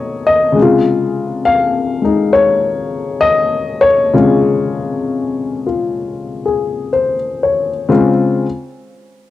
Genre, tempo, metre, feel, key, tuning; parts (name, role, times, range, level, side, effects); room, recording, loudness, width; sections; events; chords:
solo jazz; 62-68 BPM; 4/4; swing 67% on 8ths, rubato; Db major; A4 = 439 Hz
dark baby grand piano; solo; 0.0-8.5 s; Cb3 to F5; -12 LUFS; left 3 dB; cassette tape
light reverb; home recording on cassette; -12 LUFS; side -13 dB against mid
0.0-7.9 A section; 7.9-9.3 B section
0.0 Cb9; 0.6 Dbmaj7